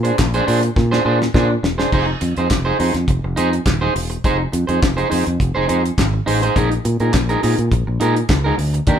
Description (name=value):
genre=disco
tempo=104 BPM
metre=4/4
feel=straight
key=F dorian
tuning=A4 = 440 Hz
part: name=electric guitar at the edge of break-up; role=accompaniment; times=0.0-9.0 s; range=D4 to C5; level=-20 LUFS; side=right 2 dB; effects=none
part: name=fingered electric bass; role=bass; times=0.0-9.0 s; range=Eb1 to Bb2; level=-19 LUFS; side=equal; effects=none
part: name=damped 70s drum kit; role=drums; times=0.0-9.0 s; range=crash cymbal, handclaps, hi-hat, kick drum, snare drum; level=-20 LUFS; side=equal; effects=none
room=light reverb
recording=band playing live in one room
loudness=-15 LUFS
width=side -8 dB against mid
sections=0.0-1.9 A section; 1.9-9.0 B section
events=drum fill 0.8-1.9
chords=0.0 Bb9; 1.9 Fm7; 6.6 Bb7sus4